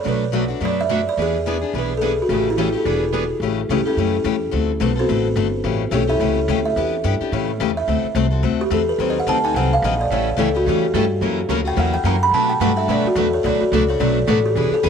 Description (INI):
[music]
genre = acoustic string swing (jazz manouche)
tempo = 215 BPM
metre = 4/4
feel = swing 56% on 8ths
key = A mixolydian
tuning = A4 = 438 Hz
[part]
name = picked steel-string acoustic guitar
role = accompaniment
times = 0.0-14.9 s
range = B2 to A4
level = -23 LUFS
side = left 12 dB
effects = none
[part]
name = buzzing kalimba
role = melody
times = 0.1-14.9 s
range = G3 to B5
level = -20 LUFS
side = right 1 dB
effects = none
[part]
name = picked plugged-in steel-string acoustic guitar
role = accompaniment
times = 0.1-3.2, 10.1-14.9 s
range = B2 to B4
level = -25 LUFS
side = right 15 dB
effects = none
[part]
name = upright bass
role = bass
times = 0.1-14.9 s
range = E1 to B2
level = -23 LUFS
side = right 1 dB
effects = none
[sound]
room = light reverb, small room ambience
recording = 1960s-style stereo with parts hard left and right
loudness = -17 LUFS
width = side -7 dB against mid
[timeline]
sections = 0.0-3.4 A section; 3.4-14.9 B section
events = kalimba solo 3.4-14.9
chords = 0.0 Bm7; 1.2 E7; 2.3 A7; 2.9 E7; 3.4 A7; 4.5 D7; 5.6 A7; 6.8 Em7; 7.3 A7; 7.9 D7; 9.0 D#dim7; 10.1 A7; 11.2 F#7; 12.3 Bm7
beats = | 0.06 0.34 0.62 0.90 | 1.18 1.46 1.74 2.02 | 2.30 2.58 2.85 3.13 | 3.41 3.69 3.97 4.25 | 4.53 4.81 5.09 5.37 | 5.65 5.92 6.20 6.48 | 6.76 7.04 7.32 7.60 | 7.88 8.15 8.43 8.71 | 8.99 9.27 9.54 9.82 | 10.10 10.38 10.66 10.94 | 11.21 11.49 11.77 12.05 | 12.33 12.61 12.89 13.16 | 13.44 13.72 14.00 14.28 | 14.56 14.84